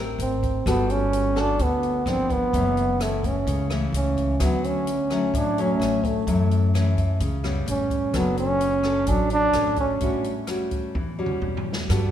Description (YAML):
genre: bossa nova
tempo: 128 BPM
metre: 4/4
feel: straight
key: D major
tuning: A4 = 440 Hz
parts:
  - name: nylon-string guitar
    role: accompaniment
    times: 0.0-12.1 s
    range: F#2 to Bb4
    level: -26 LUFS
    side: left 2 dB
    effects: none
  - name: upright bass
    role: bass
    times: 0.0-12.1 s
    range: F#1 to G2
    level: -27 LUFS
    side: equal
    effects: none
  - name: breathy trombone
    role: melody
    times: 0.2-12.1 s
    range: G2 to D4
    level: -24 LUFS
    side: right 1 dB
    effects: none
  - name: open jazz drum kit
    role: drums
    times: 0.2-12.0 s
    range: hi-hat, kick drum, rim click, snare drum, toms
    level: -31 LUFS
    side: equal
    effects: none
room: moderate concert hall reverb, RT60 2.3 s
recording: recorded in a church or concert hall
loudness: -21 LUFS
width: side -10 dB against mid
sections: 0.0-11.9 A section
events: drum fill 11.0-11.9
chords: 0.2 G#maj9; 0.7 Gmaj9; 2.1 Gm7; 2.5 F#m7; 4.4 Dmaj7; 6.3 F#m7; 7.7 A9; 8.1 Dmaj7/F#; 10.0 A6